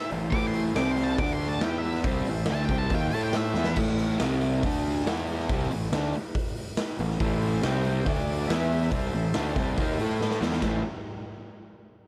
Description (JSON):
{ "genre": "garage rock duo or trio", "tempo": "140 BPM", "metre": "4/4", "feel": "straight", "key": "A minor", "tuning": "A4 = 440 Hz", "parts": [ { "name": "octave-fuzz lead guitar", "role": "melody", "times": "0.0-3.8 s", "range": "E5 to D6", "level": "-36 LUFS", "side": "equal", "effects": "distortion" }, { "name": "combo organ", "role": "sustained chords", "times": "0.0-3.7, 7.2-10.8 s", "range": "C4 to A5", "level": "-40 LUFS", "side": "equal", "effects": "none" }, { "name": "fuzz guitar", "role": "riff", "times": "0.1-10.8 s", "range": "A2 to A4", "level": "-30 LUFS", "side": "equal", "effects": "distortion" }, { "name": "fuzz fingered electric bass", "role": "bass", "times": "0.1-10.8 s", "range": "A1 to A2", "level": "-34 LUFS", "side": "equal", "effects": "overdrive" }, { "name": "raw garage drum kit", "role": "drums", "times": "0.1-10.7 s", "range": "crash cymbal, hi-hat, kick drum, ride cymbal, snare drum", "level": "-33 LUFS", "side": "equal", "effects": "none" } ], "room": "light reverb", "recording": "none", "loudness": "-27 LUFS", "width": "mono", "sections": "0.0-3.8 A section; 3.8-10.6 B section; 10.6-12.1 C section", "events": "lead electric guitar solo 0.0-3.8; drum fill 3.6, 10.2-10.6; transistor combo organ fill 9.3-10.6", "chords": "0.0 Am; 0.8 C5; 1.2 D5; 1.6 E5; 2.1 Am; 3.8 A5; 4.2 C5; 4.6 D5; 5.1 E5; 5.5 Am; 7.6 C5; 8.1 D5; 8.5 E5; 8.9 Am", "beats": "| 0.34 0.77 1.20 1.63 | 2.06 2.49 2.92 3.35 | 3.77 4.20 4.63 5.06 | 5.49 5.92 6.35 6.78 | 7.21 7.63 8.06 8.49 | 8.92 9.34 9.77 10.20 | 10.62" }